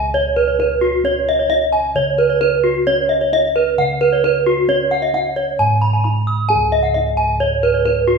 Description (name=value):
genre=Balinese gamelan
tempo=132 BPM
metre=4/4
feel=straight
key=Db slendro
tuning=A4 = 443 Hz
part: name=gamelan-type bronze metallophone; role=arpeggios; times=0.0-8.2 s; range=Gb4-35c to Eb6+30c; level=-14 LUFS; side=right 1 dB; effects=none
part: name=gamelan-type bossed gongs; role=bass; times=0.0-8.2 s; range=Db2 to Ab4+25c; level=-22 LUFS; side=right 1 dB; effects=none
room=wet recital hall reverb, RT60 1.5 s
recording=small room ambience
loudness=-14 LUFS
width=side -5 dB against mid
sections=0.0-8.2 A section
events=none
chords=none